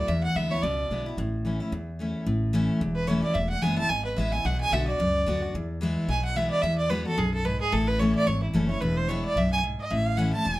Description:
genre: bluegrass.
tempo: 220 BPM.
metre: 4/4.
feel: swing 56% on 8ths.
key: A major.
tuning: A4 = 440 Hz.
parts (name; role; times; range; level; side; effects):
clear fiddle; melody; 0.0-10.6 s; E4 to A5; -27 LUFS; right 2 dB; none.
picked steel-string acoustic guitar; accompaniment; 0.0-10.6 s; E2 to F#4; -27 LUFS; left 1 dB; none.
upright bass; bass; 0.0-10.6 s; E1 to E2; -30 LUFS; equal; none.
room: moderate studio reverb, RT60 0.6 s.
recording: none.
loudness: -24 LUFS.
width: side -16 dB against mid.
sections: 0.0-2.3 A section; 2.3-10.6 B section.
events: none.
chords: 0.1 E7; 1.2 A; 3.4 E; 4.5 Bm; 5.5 E; 6.6 Eadd9; 7.7 A; 8.8 E; 9.9 A.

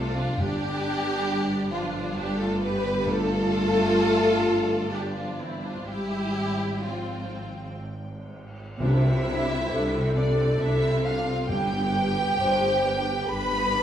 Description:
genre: cinematic, emotional film score for orchestra.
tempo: 61-68 BPM.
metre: 3/4.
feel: rubato.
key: C major.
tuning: A4 = 441 Hz.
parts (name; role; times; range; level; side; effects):
rich symphonic violin section; melody; 0.0-13.8 s; D5 to B5; -33 LUFS; equal; none.
warm symphonic violin section; second line; 0.0-13.8 s; D4 to B4; -29 LUFS; left 1 dB; none.
clear symphonic viola section; accompaniment; 0.0-13.8 s; G3 to G4; -31 LUFS; equal; none.
mellow French horn section; sustained chords; 0.0-13.8 s; E3 to C5; -30 LUFS; left 1 dB; none.
clear symphonic double bass section; bass; 0.0-13.8 s; G1 to C2; -32 LUFS; right 1 dB; none.
rich symphonic cello section; bass; 0.0-13.8 s; G2 to C3; -30 LUFS; equal; none.
timpani; percussion; 0.4-4.4, 8.8-12.8 s; G2 to C3; -33 LUFS; equal; none.
cymbal swell and tam-tam; percussion; 5.9-12.3 s; none; -38 LUFS; left 2 dB; none.
mellow hollow silver concert flute; second line; 8.8-13.8 s; D5 to B5; -32 LUFS; right 3 dB; none.
room: wet stone room reverb, RT60 1.2 s.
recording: heard from further back in the room.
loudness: -22 LUFS.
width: side -10 dB against mid.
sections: 0.0-8.8 A section; 8.8-13.8 B section.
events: band accent 8.8-9.7.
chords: 0.4 G5; 5.9 Fmadd9/Ab; 8.8 Csus2; 11.5 G.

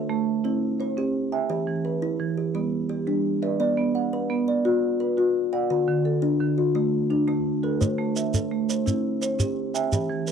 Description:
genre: southern african traditional, mbira-style interlocking cycle.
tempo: 114 BPM (dotted quarters).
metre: 12/8.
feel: straight.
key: unclear.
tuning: A4 = 440 Hz.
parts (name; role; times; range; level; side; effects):
kalimba; arpeggios; 0.0-10.3 s; D3 to A5; -25 LUFS; left 4 dB; none.
marimba with soft mallets; arpeggios; 0.0-10.3 s; D3 to G5+29c; -26 LUFS; right 8 dB; none.
shekere; percussion; 7.8-10.3 s; none; -25 LUFS; right 2 dB; none.
room: light reverb.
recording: dry, close 1970s-style studio recording.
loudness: -22 LUFS.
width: side -7 dB against mid.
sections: 0.0-10.3 A section.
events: none.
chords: 0.4 C; 1.5 Em; 2.5 G; 3.6 Bm; 5.7 D; 7.8 Am; 8.9 C.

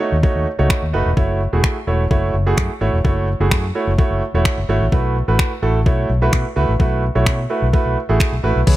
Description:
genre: dance-pop.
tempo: 128 BPM.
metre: 4/4.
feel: straight.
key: unclear.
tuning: A4 = 441 Hz.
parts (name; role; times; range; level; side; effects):
clear concert grand piano; accompaniment; 0.0-8.8 s; A3 to C#5; -20 LUFS; right 3 dB; sidechain pumping.
vintage muted fingered electric bass; bass; 0.1-8.8 s; E1 to B2; -18 LUFS; left 1 dB; sidechain pumping.
crisp 8-bit digital drum machine; drums; 0.2-8.8 s; crash cymbal, finger snaps, kick drum; -17 LUFS; left 1 dB; overdrive.
woody wave-folded pluck; arpeggios; 8.7-8.8 s; E3; -22 LUFS; left 5 dB; chorus, sidechain pumping.
room: little or no reverb.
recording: none.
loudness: -15 LUFS.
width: side -15 dB against mid.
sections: 0.0-8.7 A section.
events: none.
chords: 0.0 D#m7b5; 1.2 F#m7; 4.9 B7sus4.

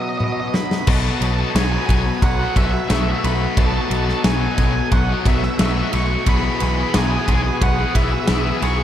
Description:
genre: post-rock.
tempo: 89 BPM.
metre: 4/4.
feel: straight.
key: unclear.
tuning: A4 = 440 Hz.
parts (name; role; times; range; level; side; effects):
octave-fuzz lead guitar; melody; 0.0-8.8 s; D#5 to C#6; -25 LUFS; right 3 dB; distortion, tape echo.
clear studio string section; sustained chords; 0.0-8.8 s; F#3 to D#6; -32 LUFS; equal; none.
twangy electric guitar; arpeggios; 0.0-8.8 s; B2 to G#4; -26 LUFS; equal; analog chorus, tape echo.
big rock drum kit; drums; 0.2-8.8 s; crash cymbal, kick drum, ride cymbal, snare drum, toms; -20 LUFS; equal; none.
distorted electric guitar; riff; 0.9-8.8 s; B2 to G#4; -25 LUFS; left 8 dB; distortion.
growling picked electric bass; bass; 0.9-8.8 s; B1; -21 LUFS; equal; overdrive.
room: moderate huge ambient reverb, RT60 8.9 s.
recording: dreamy mix soaked in reverb.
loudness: -16 LUFS.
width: side -10 dB against mid.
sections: 0.9-8.8 A section.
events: break 0.0-0.9; drum fill 0.2-0.9.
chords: 0.0 B; 0.9 B7sus4; 6.3 Emaj7/B.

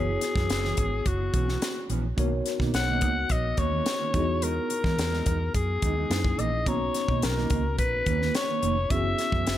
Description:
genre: polished 1980s jazz-funk pop.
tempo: 107 BPM.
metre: 4/4.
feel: straight.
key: B major.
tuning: A4 = 441 Hz.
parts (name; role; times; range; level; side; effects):
growling alto saxophone; melody; 0.0-9.6 s; F#4 to F#5; -29 LUFS; left 3 dB; none.
mellow tine electric piano; accompaniment; 0.0-9.6 s; A#3 to A#5; -33 LUFS; left 1 dB; medium stereo tremolo, lush chorus.
mellow electric guitar; riff; 0.0-9.5 s; D#3 to D#4; -34 LUFS; right 8 dB; lush chorus.
vintage muted fingered electric bass; bass; 0.0-9.6 s; E#1 to E3; -29 LUFS; equal; none.
tight funk drum kit; drums; 0.2-9.6 s; hi-hat, kick drum, snare drum; -29 LUFS; equal; gated reverb.
room: small room ambience.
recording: none.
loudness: -24 LUFS.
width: side -12 dB against mid.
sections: 0.0-9.6 A section.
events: none.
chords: 0.0 F#7sus4; 2.2 Bmaj9; 4.1 Emaj9; 6.1 F#13; 6.7 Bmaj9; 8.9 F#7sus4.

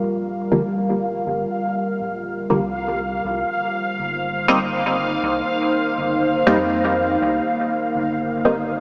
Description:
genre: dub techno.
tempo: 121 BPM.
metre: 4/4.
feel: straight.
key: unclear.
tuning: A4 = 440 Hz.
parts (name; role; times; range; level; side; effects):
deep dark ambient pad; sustained chords; 0.0-8.8 s; G3 to C5; -25 LUFS; equal; chorus, built-in reverb.
round analog bass; bass; 0.0-8.8 s; D1 to F2; -36 LUFS; equal; none.
bubbling stepped-filter texture; texture; 0.0-8.8 s; F5; -27 LUFS; equal; chorus, built-in reverb.
filtered dub chord stab; stabs; 0.5-8.6 s; D3 to Eb4; -25 LUFS; equal; chorus, phaser, dub echo.
room: wet huge ambient reverb, RT60 6.5 s.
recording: dreamy mix soaked in reverb, small speaker sound.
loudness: -21 LUFS.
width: mono.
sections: 0.0-8.8 A section.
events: none.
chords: 0.0 Gm7; 3.2 Cm7.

